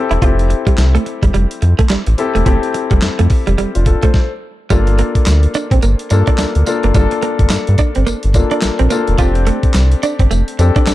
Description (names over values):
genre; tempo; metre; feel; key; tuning
R&B, new jack swing; 107 BPM; 4/4; swing 60% on 16ths; G dorian; A4 = 440 Hz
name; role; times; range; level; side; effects
warm concert grand piano; accompaniment; 0.0-10.9 s; Bb3 to C5; -19 LUFS; left 5 dB; none
direct-recorded clean electric guitar; riff; 0.1-10.9 s; G3 to F4; -20 LUFS; right 6 dB; lush chorus
round analog bass; bass; 0.1-10.9 s; E1 to G2; -13 LUFS; equal; none
dusty soul sampler-style drum kit; drums; 0.1-10.9 s; handclaps, hi-hat, kick drum, snare drum, tambourine; -15 LUFS; equal; none
room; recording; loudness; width
little or no reverb; dark, warm production; -11 LUFS; side -15 dB against mid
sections
0.0-4.7 A section; 4.7-10.9 B section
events
stop 4.1-4.7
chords
0.2 Fmaj7; 4.7 Gm9; 9.2 F6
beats
| 0.22 0.78 1.34 1.90 | 2.46 3.02 3.58 4.14 | 4.70 5.26 5.83 6.39 | 6.95 7.51 8.07 8.63 | 9.19 9.75 10.31 10.87